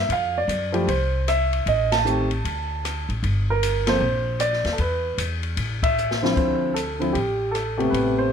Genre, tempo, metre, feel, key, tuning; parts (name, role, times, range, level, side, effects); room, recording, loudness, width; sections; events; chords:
jazz piano trio; 153 BPM; 4/4; swing 64% on 8ths; D minor; A4 = 443 Hz
warm grand piano; melody; 0.0-8.3 s; C3 to A5; -22 LUFS; right 1 dB
upright bass; bass; 0.0-8.3 s; G1 to F#2; -26 LUFS; equal
open jazz drum kit; drums; 0.1-8.1 s; crash cymbal, hi-hat, kick drum, ride cymbal, rim click, snare drum; -29 LUFS; left 3 dB
moderate studio reverb, RT60 0.5 s; -20 LUFS; side -7 dB against mid
0.0-6.4 A section; 6.4-8.3 B section
band accent 1.9, 5.8; drum fill 6.0-6.4
0.1 Fmaj7(no3); 1.7 Am7b5; 2.4 D5; 3.2 Gmadd11; 4.8 E5; 5.6 A5; 6.4 Dm9